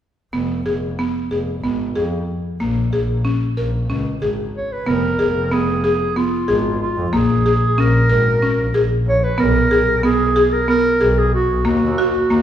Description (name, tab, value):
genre	contemporary instrumental, contemporary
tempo	185 BPM (eighths)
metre	7/8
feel	straight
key	unclear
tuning	A4 = 440 Hz
part	buzzing marimba with medium hard mallets	arpeggios	0.3-12.4 s	Bb3 to Bb4	-19 LUFS	equal	none
part	clear double bass	bass	0.3-12.4 s	F1 to F2	-20 LUFS	equal	none
part	breathy clarinet	melody	4.6-12.4 s	F4 to Db5	-19 LUFS	right 1 dB	none
room	wet recital hall reverb, RT60 1.7 s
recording	heard from further back in the room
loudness	-15 LUFS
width	side -10 dB against mid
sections	0.3-4.9 A section; 4.9-12.4 B section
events	none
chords	0.3 Fdim; 2.6 Bbm7; 4.9 Fdim; 7.1 Bbm7; 9.4 Abm/Cb; 11.7 Ebm